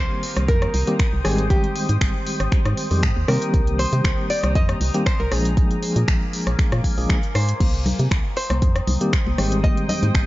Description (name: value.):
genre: deep house.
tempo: 118 BPM.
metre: 4/4.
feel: straight.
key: C minor.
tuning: A4 = 440 Hz.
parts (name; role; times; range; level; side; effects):
hollow-body jazz guitar; melody; 0.0-10.3 s; G4 to Eb5; -28 LUFS; equal; tape echo.
deep dark ambient pad; sustained chords; 0.0-10.3 s; Bb4 to Eb6; -32 LUFS; equal; chorus, built-in reverb, sidechain pumping.
tine electric piano; stabs; 0.0-10.3 s; Eb3 to Ab4; -25 LUFS; equal; medium tremolo, sidechain pumping.
organ-like FM bass; bass; 0.0-10.2 s; Ab1 to C3; -22 LUFS; equal; sidechain pumping.
deep house drum kit; drums; 0.2-10.3 s; crash cymbal, finger snaps, hi-hat, rim click; -28 LUFS; left 1 dB; small room reverb.
electronic kick drum; drums; 0.5-10.3 s; none; -20 LUFS; equal; small room reverb.
congas; percussion; 7.6-10.1 s; none; -29 LUFS; left 2 dB; none.
room: little or no reverb.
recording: nothing above 7.5 kHz.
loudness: -18 LUFS.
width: side -17 dB against mid.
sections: 0.0-10.3 A section.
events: none.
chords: 0.0 Cm7; 1.2 Abmaj7; 3.3 Cm7; 5.3 Bb7; 7.6 Cm7; 9.4 Abmaj7.